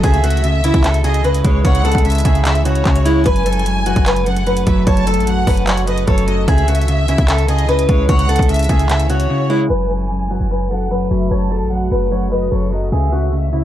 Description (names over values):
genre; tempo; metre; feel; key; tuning
hip hop, trap; 149 BPM; 4/4; half-time; F# dorian; A4 = 439 Hz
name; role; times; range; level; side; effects
picked acoustic archtop guitar; melody; 0.0-13.6 s; E4 to C#5; -20 LUFS; equal; tape echo
warm studio violin section; second line; 0.0-13.6 s; C#5 to A5; -24 LUFS; equal; tape echo
mellow electric guitar; accompaniment; 0.0-13.6 s; F#2 to G#3; -20 LUFS; left 1 dB; analog chorus
deep dark ambient pad; sustained chords; 0.0-13.6 s; C#3 to F#4; -27 LUFS; right 2 dB; chorus, built-in reverb
clean 808-style bass; bass; 0.0-13.6 s; F#1 to C#2; -17 LUFS; equal; transformer saturation
trap drum kit; drums; 0.0-13.6 s; handclaps, hi-hat, kick drum; -18 LUFS; equal; none
room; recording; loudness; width
digital ambience; dry, gritty hardware recording, transformer saturation, low-pass filter; -13 LUFS; side -12 dB against mid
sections
0.0-9.7 A section; 9.7-13.6 B section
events
drums muted 9.3-9.7; filter sweep 9.7-13.6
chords
0.0 C#m; 3.3 F#m; 6.5 C#m; 9.7 F#m; 12.9 C#m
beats
| 0.04 0.44 0.84 1.24 | 1.65 2.05 2.45 2.85 | 3.26 3.66 4.06 4.46 | 4.87 5.27 5.67 6.08 | 6.48 6.88 7.28 7.69 | 8.09 8.49 8.89 9.30 | 9.70 10.10 10.51 10.91 | 11.31 11.71 12.12 12.52 | 12.92 13.32